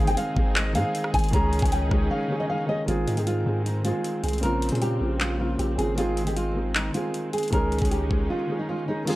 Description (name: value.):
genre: hip hop, trap.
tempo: 155 BPM.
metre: 4/4.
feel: half-time.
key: Ab major.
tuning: A4 = 443 Hz.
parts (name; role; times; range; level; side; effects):
nylon-string guitar; melody; 0.0-9.2 s; Eb4 to Bb5; -28 LUFS; right 1 dB; analog delay.
felt-muted upright piano; accompaniment; 0.0-9.2 s; Db3 to Ab4; -28 LUFS; left 1 dB; none.
warm symphonic string section; sustained chords; 0.0-9.2 s; Db3 to Ab4; -37 LUFS; right 1 dB; none.
long sustained 808-style bass; bass; 0.0-8.3 s; Ab1 to Bb2; -27 LUFS; equal; none.
trap drum kit; drums; 0.1-9.2 s; crash cymbal, handclaps, hi-hat, kick drum, rim click; -27 LUFS; equal; none.
room: studio reverb.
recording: dry, gritty hardware recording.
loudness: -22 LUFS.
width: side -17 dB against mid.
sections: 0.0-2.9 A section; 2.9-9.1 B section.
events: break 2.1-2.9, 8.3-9.1.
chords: 0.0 Ab; 1.3 Dbsus2; 2.9 Ab; 4.4 Bbmadd9; 6.0 Ab; 7.5 Dbsus2.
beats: 0.17 0.56 0.95 | 1.33 1.72 2.11 2.49 | 2.88 3.27 3.65 4.04 | 4.43 4.82 5.20 5.59 | 5.98 6.37 6.75 7.14 | 7.53 7.91 8.30 8.69 | 9.07.